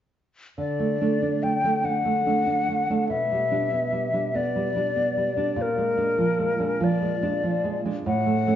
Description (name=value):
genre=romantic duo for flute and classical guitar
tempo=48 BPM (dotted quarters)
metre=6/8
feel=rubato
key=D major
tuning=A4 = 438 Hz
part: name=hollow concert flute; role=melody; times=0.6-8.6 s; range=Bb4 to G5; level=-24 LUFS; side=left 3 dB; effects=none
part: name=nylon-string guitar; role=accompaniment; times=0.6-8.6 s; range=A2 to D4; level=-25 LUFS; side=right 3 dB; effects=none
room=wet recital hall reverb, RT60 1.7 s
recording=recorded in a church or concert hall, nothing above 7.5 kHz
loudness=-22 LUFS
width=side -10 dB against mid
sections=0.6-8.6 A section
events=none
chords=0.6 D; 3.1 G/B; 5.6 Bb7